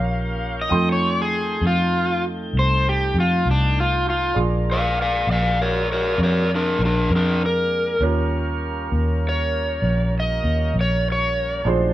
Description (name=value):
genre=slow blues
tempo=66 BPM (dotted quarters)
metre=12/8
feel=straight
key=unclear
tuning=A4 = 443 Hz
part: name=overdriven slide guitar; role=melody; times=0.0-11.7 s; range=D4 to F5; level=-22 LUFS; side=left 1 dB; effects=none
part: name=clear upright piano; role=accompaniment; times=0.0-11.9 s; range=A3 to C6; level=-29 LUFS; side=right 5 dB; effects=none
part: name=tonewheel organ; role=sustained chords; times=0.0-11.9 s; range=Eb3 to G5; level=-31 LUFS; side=left 1 dB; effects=slow rotary speaker
part: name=vintage muted fingered electric bass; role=bass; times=0.0-11.9 s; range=Bb1 to F2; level=-21 LUFS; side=equal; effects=none
room=moderate large studio reverb, RT60 1.2 s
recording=band playing live in one room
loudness=-18 LUFS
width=side -14 dB against mid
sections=0.0-4.4 A section; 4.4-11.9 B section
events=electric slide guitar solo 4.4-11.9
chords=0.0 Eb9 (rootless); 0.7 F9; 4.4 Bb9; 8.0 Eb9